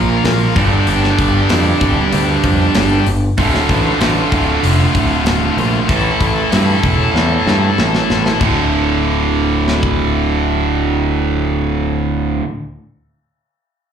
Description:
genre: heavy metal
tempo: 95 BPM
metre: 4/4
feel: straight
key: D minor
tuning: A4 = 438 Hz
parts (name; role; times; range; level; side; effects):
- distorted electric guitar; riff; 0.0-12.4 s; D2 to Bb4; -19 LUFS; left 12 dB; overdrive, slapback echo
- distorted electric guitar; riff; 0.0-12.4 s; D2 to Bb3; -17 LUFS; right 10 dB; overdrive, slapback echo
- overdriven picked electric bass; bass; 0.0-12.4 s; D1 to G2; -17 LUFS; left 1 dB; none
- tight metal drum kit; drums; 0.2-10.0 s; crash cymbal, hi-hat, kick drum, snare drum; -20 LUFS; left 2 dB; none
room: little or no reverb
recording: live gig heard through the venue's PA, club reverb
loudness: -12 LUFS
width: side -8 dB against mid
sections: 0.0-8.4 A section; 8.4-10.9 B section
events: drum fill 7.1-8.4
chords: 0.0 Bb5; 0.6 G5; 3.4 Dm; 5.9 A5; 8.4 D5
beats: 0.24 | 0.87 1.50 2.12 2.75 | 3.38 4.00 4.63 5.26 | 5.89 6.52 7.15 7.78 | 8.41 9.04 9.67 10.30

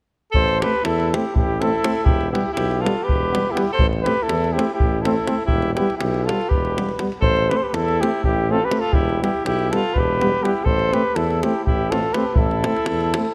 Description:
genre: balkan folk, Balkan brass band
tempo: 245 BPM (eighths)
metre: 7/8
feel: straight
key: A minor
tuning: A4 = 442 Hz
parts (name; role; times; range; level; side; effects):
- dark trumpet; melody; 0.3-13.3 s; G4 to C5; -25 LUFS; equal; none
- clear alto saxophone; second line; 0.3-13.3 s; E4 to A4; -29 LUFS; equal; none
- davul; percussion; 0.3-13.3 s; none; -25 LUFS; equal; none
- clear tuba; bass; 0.4-13.2 s; E1 to E2; -27 LUFS; equal; none
- bright trombone; accompaniment; 0.6-13.2 s; B3 to C4; -32 LUFS; equal; none
- mellow euphonium; accompaniment; 0.6-13.3 s; G3 to A3; -30 LUFS; equal; none
room: moderate concert hall reverb, RT60 2.0 s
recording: close, detailed microphones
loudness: -20 LUFS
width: mono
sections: 0.3-13.3 A section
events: none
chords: 0.3 Am; 2.1 Em; 3.8 Am; 5.5 Em; 7.2 Am; 8.9 Em; 10.7 Am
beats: | 0.34 0.59 0.83 1.08 1.32 1.57 1.81 | 2.06 2.30 2.55 2.79 3.04 3.28 3.53 | 3.77 4.02 4.27 4.51 4.76 5.00 5.25 | 5.50 5.74 5.99 6.23 6.48 6.72 6.97 | 7.22 7.46 7.71 7.96 8.20 8.45 8.69 | 8.94 9.18 9.43 9.67 9.92 10.16 10.41 | 10.65 10.90 11.14 11.39 11.63 11.87 12.12 | 12.36 12.61 12.85 13.09 13.34

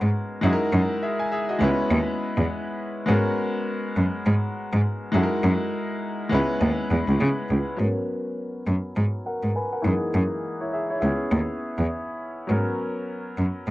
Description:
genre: afrobeats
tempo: 102 BPM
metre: 4/4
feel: swing 58% on 16ths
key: G# minor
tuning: A4 = 440 Hz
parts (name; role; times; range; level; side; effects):
- bright grand piano; accompaniment; 0.0-13.7 s; E3 to G#5; -26 LUFS; left 1 dB; low-pass filter, cassette tape
- clear cello; bass; 0.0-13.7 s; C#2 to C#3; -22 LUFS; equal; none
room: light reverb, studio ambience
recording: home recording on cassette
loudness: -22 LUFS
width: side -17 dB against mid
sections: 0.0-7.8 A section; 7.8-13.7 B section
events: filter sweep on grand piano 7.8-13.7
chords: 0.4 F#13; 1.6 C#m7; 3.1 G#m11; 5.1 F#13; 6.3 C#m7; 7.8 G#m11; 9.8 F#13; 11.0 C#m7; 12.5 G#m11 (rootless)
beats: 0.14 | 0.73 1.32 1.91 2.50 | 3.08 3.67 4.26 4.85 | 5.44 6.02 6.61 7.20 | 7.79 8.38 8.96 9.55 | 10.14 10.73 11.32 11.91 | 12.49 13.08 13.67

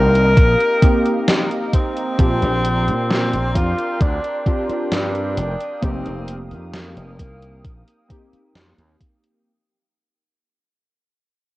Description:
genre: vaporwave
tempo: 66 BPM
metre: 4/4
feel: straight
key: unclear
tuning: A4 = 440 Hz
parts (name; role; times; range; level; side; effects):
- breathy tenor saxophone; melody; 0.0-8.1 s; Bb3 to Bb4; -21 LUFS; left 1 dB; tape echo
- warbly lo-fi synth keys; accompaniment; 0.0-9.5 s; Bb3 to G4; -25 LUFS; right 1 dB; analog chorus, analog delay
- lush unison pad; sustained chords; 0.0-9.4 s; G4 to Eb6; -31 LUFS; equal; chorus
- gritty slap bass; bass; 0.0-9.0 s; F1 to Bb2; -21 LUFS; equal; overdrive, tube saturation
- gated 80s digital drum machine; drums; 0.2-9.4 s; hi-hat, snare drum; -22 LUFS; equal; gated reverb, gated reverb snare, overdrive, vintage 12-bit sampler grit
- electronic kick drum; drums; 0.4-9.2 s; none; -16 LUFS; equal; overdrive, vintage 12-bit sampler grit
room: light reverb, digital ambience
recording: worn, warbling old tape, cassette tape, warbly pitch drift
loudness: -16 LUFS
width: side -18 dB against mid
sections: 0.0-9.5 A section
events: fade-out 0.0-9.5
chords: 0.0 F9sus4; 2.2 Bb69; 5.4 F9sus4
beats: 0.37 1.28 | 2.19 3.10 4.01 4.92 | 5.83 6.74 7.65 8.56

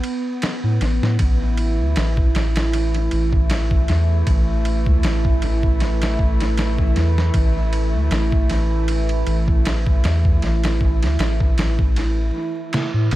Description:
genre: trip hop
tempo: 78 BPM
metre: 4/4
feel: swing 55% on 16ths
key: unclear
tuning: A4 = 440 Hz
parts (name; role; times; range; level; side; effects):
- warbly tape-like pad; sustained chords; 0.0-13.2 s; E3 to E4; -25 LUFS; right 2 dB; chorus, built-in reverb
- boom bap sampler-style drum kit; drums; 0.0-13.2 s; kick drum, ride cymbal, snare drum; -21 LUFS; equal; analog delay
- soft dub sub bass; bass; 0.6-13.2 s; A1 to A2; -19 LUFS; equal; none
- bowed-like drone; texture; 2.5-13.2 s; A3; -32 LUFS; right 1 dB; built-in reverb
room: little or no reverb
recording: echo-heavy mix, vinyl crackle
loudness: -16 LUFS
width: side -16 dB against mid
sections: 0.0-13.2 A section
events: break 12.0-13.2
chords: 0.0 A5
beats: 0.42 | 1.20 1.96 2.73 3.50 | 4.27 5.04 5.81 6.58 | 7.35 8.12 8.89 9.66 | 10.43 11.20 11.96 12.73

